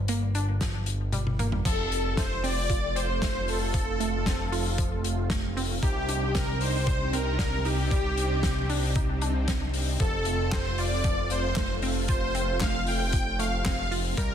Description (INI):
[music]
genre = synthwave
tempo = 115 BPM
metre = 4/4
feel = straight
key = unclear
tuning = A4 = 441 Hz
[part]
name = fat analog bass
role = bass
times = 0.0-14.3 s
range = F1 to C2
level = -29 LUFS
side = equal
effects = none
[part]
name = analog pluck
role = arpeggios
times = 0.1-14.3 s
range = F3 to F4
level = -36 LUFS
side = right 2 dB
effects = chorus, ping-pong delay
[part]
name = loose indie drum kit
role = drums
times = 0.1-14.3 s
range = crash cymbal, handclaps, hi-hat, snare drum, toms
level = -32 LUFS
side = left 2 dB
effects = none
[part]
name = electronic kick drum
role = drums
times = 0.6-14.3 s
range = none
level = -29 LUFS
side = equal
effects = none
[part]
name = soft supersaw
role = melody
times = 1.7-14.3 s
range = G4 to G5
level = -32 LUFS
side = equal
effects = ping-pong delay
[part]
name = string machine, violins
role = second line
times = 1.7-14.3 s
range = G4 to G5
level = -36 LUFS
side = equal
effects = ensemble chorus, ping-pong delay
[part]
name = analog string pad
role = sustained chords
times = 1.7-14.3 s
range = C3 to G4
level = -35 LUFS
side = equal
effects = ensemble chorus, sidechain pumping
[sound]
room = light reverb, small room ambience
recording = dense, heavily limited modern master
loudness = -24 LUFS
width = side -9 dB against mid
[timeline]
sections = 0.0-1.7 A section; 1.7-14.3 B section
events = kick drops out 1.1-1.7; drum fill 1.1-1.7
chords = 0.0 Gm7; 1.7 F; 5.8 Cmadd9; 10.0 F